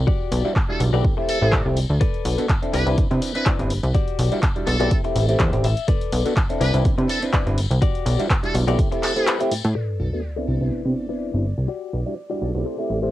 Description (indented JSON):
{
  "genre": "filtered disco house",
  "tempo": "124 BPM",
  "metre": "4/4",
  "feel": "swing 54% on 16ths",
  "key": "E minor",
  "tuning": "A4 = 440 Hz",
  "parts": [
    { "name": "plucky analog bass", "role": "bass", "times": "0.0-13.1 s", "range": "G1 to C3", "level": "-21 LUFS", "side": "equal", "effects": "tube saturation, sidechain pumping, low-pass filter" },
    { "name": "direct-recorded clean electric guitar", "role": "riff", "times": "0.1-13.1 s", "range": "E4 to E5", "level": "-28 LUFS", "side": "left 10 dB", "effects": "sidechain pumping, low-pass filter" },
    { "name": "electronic kick drum", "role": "drums", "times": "0.1-8.9 s", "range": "none", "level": "-22 LUFS", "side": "equal", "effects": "cassette tape" },
    { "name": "tambourine", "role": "percussion", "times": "0.1-9.7 s", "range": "none", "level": "-38 LUFS", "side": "left 12 dB", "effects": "sidechain pumping on perc, low-pass filter on perc" },
    { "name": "punchy analog drum machine", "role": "drums", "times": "0.3-9.7 s", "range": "handclaps, hi-hat", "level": "-28 LUFS", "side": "equal", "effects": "sidechain pumping on hats, cassette tape" },
    { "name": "overdriven clav", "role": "accompaniment", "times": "0.4-13.1 s", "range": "G3 to B4", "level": "-24 LUFS", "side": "right 1 dB", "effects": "phaser, sidechain pumping, low-pass filter" },
    { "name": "muted trumpet section", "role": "melody", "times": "0.7-12.7 s", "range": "A4 to B4", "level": "-30 LUFS", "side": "equal", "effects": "sidechain pumping, low-pass filter, tape echo" },
    { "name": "warm chamber violin section", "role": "sustained chords", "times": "9.8-13.1 s", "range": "D5 to D6", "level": "-40 LUFS", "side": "left 1 dB", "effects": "sidechain pumping, low-pass filter" },
    { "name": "sub drop", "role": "sound effects", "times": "9.8-11.7 s", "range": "none", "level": "-30 LUFS", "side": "equal", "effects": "none" }
  ],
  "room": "little or no reverb",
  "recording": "home recording on cassette",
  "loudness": "-19 LUFS",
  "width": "side -14 dB against mid",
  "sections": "0.0-9.8 A section; 9.8-13.1 B section",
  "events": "clean electric guitar fill 5.2-5.9; kick drops out 9.3-9.8; impact 9.8-11.7; filter sweep 9.8-13.1",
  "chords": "0.1 Em9/B; 1.0 Am7; 2.0 Bm7; 2.7 Cmaj9; 3.9 Em9/B; 4.9 Am7; 5.9 Bm7; 6.6 Cmaj9; 7.8 Em9/B; 8.8 Am7; 9.8 Bm7; 10.5 Cmaj9; 11.7 Em9/B",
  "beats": "| 0.08 0.56 1.04 1.53 | 2.01 2.50 2.98 3.46 | 3.95 4.43 4.92 5.40 | 5.88 6.37 6.85 7.34 | 7.82 8.30 8.79 9.27 | 9.76 10.24 10.72 11.21 | 11.69 12.17 12.66"
}